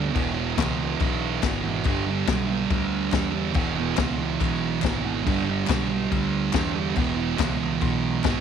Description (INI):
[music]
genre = garage rock duo or trio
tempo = 141 BPM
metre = 4/4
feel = straight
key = unclear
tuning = A4 = 435 Hz
[part]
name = thick fuzz guitar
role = riff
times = 0.0-8.4 s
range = E2 to G3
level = -24 LUFS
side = right 8 dB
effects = distortion
[part]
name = growling picked electric bass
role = bass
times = 0.0-8.4 s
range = E1 to E2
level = -30 LUFS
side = left 2 dB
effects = overdrive
[part]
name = vintage drum kit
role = drums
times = 0.2-8.3 s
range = crash cymbal, kick drum, snare drum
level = -27 LUFS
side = left 5 dB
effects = none
[part]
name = group handclap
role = percussion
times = 0.6-8.3 s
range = none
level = -37 LUFS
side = left 15 dB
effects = none
[sound]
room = light reverb, small room ambience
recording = 1960s-style stereo with parts hard left and right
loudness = -22 LUFS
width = side -8 dB against mid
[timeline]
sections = 0.0-8.4 A section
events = none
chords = 0.2 E; 1.9 G; 3.6 E; 5.3 G; 7.0 E5